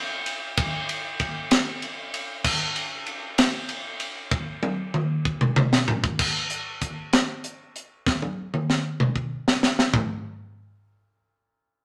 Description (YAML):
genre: rock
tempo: 64 BPM (dotted quarters)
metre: 6/8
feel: straight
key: none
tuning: none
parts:
  - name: crisp fusion drum kit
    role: drums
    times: 0.3-10.1 s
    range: crash cymbal, hi-hat, kick drum, ride cymbal, snare drum, toms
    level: -25 LUFS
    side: equal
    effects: none
room: moderate studio reverb, RT60 0.9 s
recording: none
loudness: -25 LUFS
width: mono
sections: 0.0-6.2 A section; 6.2-9.9 B section; 9.9-11.8 C section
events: drum fill 4.3-6.2, 8.1-9.9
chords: none